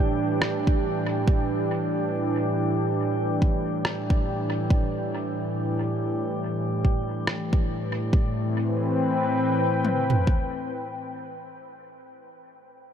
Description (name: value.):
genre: ambient dub.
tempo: 70 BPM.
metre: 4/4.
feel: swing 59% on 16ths.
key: A minor.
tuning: A4 = 441 Hz.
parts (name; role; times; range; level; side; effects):
warm analog pad; sustained chords; 0.0-12.1 s; A2 to G5; -26 LUFS; left 1 dB; lush chorus.
drifting glass-harmonics texture; texture; 0.0-8.2 s; G3 to G4; -30 LUFS; right 3 dB; chorus, built-in reverb.
electronic rim click; drums; 0.4-7.5 s; none; -34 LUFS; equal; small room ambience, dub echo.
deep house drum kit; drums; 0.7-10.5 s; kick drum, toms; -22 LUFS; equal; small room ambience.
room: light reverb.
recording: none.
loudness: -23 LUFS.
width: side -8 dB against mid.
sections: 0.0-8.1 A section; 8.1-11.6 B section.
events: none.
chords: 0.0 Em7/A; 8.1 Am9.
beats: 0.42 | 1.27 2.13 2.99 3.85 | 4.70 5.56 6.42 7.28 | 8.13 8.99 9.85 10.70.